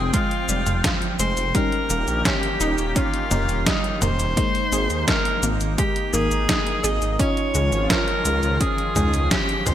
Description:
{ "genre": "synthwave", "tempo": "85 BPM", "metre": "4/4", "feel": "straight", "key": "Ab major", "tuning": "A4 = 440 Hz", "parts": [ { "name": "bright tenor saxophone", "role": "melody", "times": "0.0-9.7 s", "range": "Eb4 to Eb5", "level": "-24 LUFS", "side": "left 1 dB", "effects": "digital delay" }, { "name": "warm analog pad", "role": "sustained chords", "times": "0.0-9.7 s", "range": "Eb3 to G5", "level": "-31 LUFS", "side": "right 1 dB", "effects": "chorus, sidechain pumping" }, { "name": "analog pluck", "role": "arpeggios", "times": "0.0-9.7 s", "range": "F3 to Ab4", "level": "-29 LUFS", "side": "right 2 dB", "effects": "chorus, vintage 12-bit sampler grit, digital delay" }, { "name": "FM electric piano with soft pad layer", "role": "stabs", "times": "0.0-9.1 s", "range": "Ab3 to G5", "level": "-31 LUFS", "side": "left 3 dB", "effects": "chorus, phaser, cassette tape" }, { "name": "dark detuned saw bass", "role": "bass", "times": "0.0-9.7 s", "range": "Eb1 to Eb2", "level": "-24 LUFS", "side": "equal", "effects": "sidechain pumping" }, { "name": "detuned 8-bit digital drum machine", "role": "drums", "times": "0.1-9.7 s", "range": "cabasa, hi-hat, snare drum, toms", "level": "-24 LUFS", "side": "equal", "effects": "gated reverb" }, { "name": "electronic kick drum", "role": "drums", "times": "0.1-9.5 s", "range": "none", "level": "-26 LUFS", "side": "equal", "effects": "overdrive" } ], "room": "moderate lush hall reverb, RT60 2.7 s", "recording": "bright 1980s-style digital production", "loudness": "-19 LUFS", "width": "side -11 dB against mid", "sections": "0.0-9.7 A section", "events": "none", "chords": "0.0 Fmadd9; 1.5 Eb7; 4.4 Absus2; 7.2 Dbadd9", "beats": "0.14 0.84 | 1.55 2.25 2.96 3.67 | 4.37 5.08 5.78 6.49 | 7.20 7.90 8.61 9.31" }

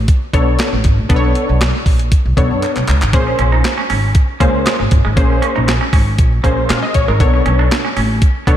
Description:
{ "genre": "early-eighties boogie funk", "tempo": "118 BPM", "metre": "4/4", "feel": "straight", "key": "unclear", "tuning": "A4 = 441 Hz", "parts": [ { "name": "upright bass", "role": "bass", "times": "0.0-8.6 s", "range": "G1 to Bb2", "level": "-16 LUFS", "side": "equal", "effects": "none" }, { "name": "clean 12-bit digital drum machine", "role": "drums", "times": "0.1-8.6 s", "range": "handclaps, hi-hat, kick drum, snare drum", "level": "-15 LUFS", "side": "equal", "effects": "none" }, { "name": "funky polysynth comp", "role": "accompaniment", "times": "0.3-8.6 s", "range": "Bb3 to F5", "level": "-18 LUFS", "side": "left 2 dB", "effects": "chorus" }, { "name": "semi-hollow electric guitar", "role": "riff", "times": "3.3-8.6 s", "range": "Ab3 to Eb4", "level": "-21 LUFS", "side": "right 4 dB", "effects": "lush chorus" } ], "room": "moderate lush hall reverb, RT60 1.9 s", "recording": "dreamy mix soaked in reverb", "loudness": "-11 LUFS", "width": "side -11 dB against mid", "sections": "0.0-8.6 A section", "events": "drum fill 2.6-3.1", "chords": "0.0 Bm9; 3.1 Bbm9; 7.2 Bm9", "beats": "0.08 0.59 | 1.10 1.61 2.12 2.62 | 3.13 3.64 4.15 4.66 | 5.17 5.68 6.18 6.69 | 7.20 7.71 8.22" }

